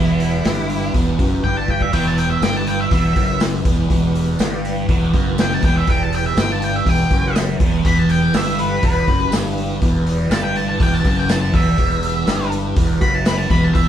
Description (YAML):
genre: psychedelic rock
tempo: 122 BPM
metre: 4/4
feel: straight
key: E minor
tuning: A4 = 439 Hz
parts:
  - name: octave-fuzz lead guitar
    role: melody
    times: 0.0-13.9 s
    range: E4 to B5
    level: -22 LUFS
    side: equal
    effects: distortion
  - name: bright tonewheel organ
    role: sustained chords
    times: 0.0-13.9 s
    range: E3 to B4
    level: -30 LUFS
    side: right 4 dB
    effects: slow rotary speaker, chorus vibrato
  - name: thick fuzz guitar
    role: riff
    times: 0.0-13.9 s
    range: E2 to G2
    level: -19 LUFS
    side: equal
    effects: distortion, phaser
  - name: fingered electric bass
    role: bass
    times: 0.0-13.9 s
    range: E1 to G1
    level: -23 LUFS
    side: equal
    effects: none
  - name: vintage drum kit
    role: drums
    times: 0.2-13.9 s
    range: crash cymbal, hi-hat, kick drum, snare drum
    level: -20 LUFS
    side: equal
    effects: none
  - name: tambourine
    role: percussion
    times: 2.4-13.4 s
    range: none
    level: -37 LUFS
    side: right 8 dB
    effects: none
room: wet stone room reverb, RT60 1.0 s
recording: band playing live in one room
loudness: -15 LUFS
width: side -10 dB against mid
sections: 0.0-13.9 A section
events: lead electric guitar solo 0.0-13.9; drum fill 1.4-1.9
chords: 0.0 Em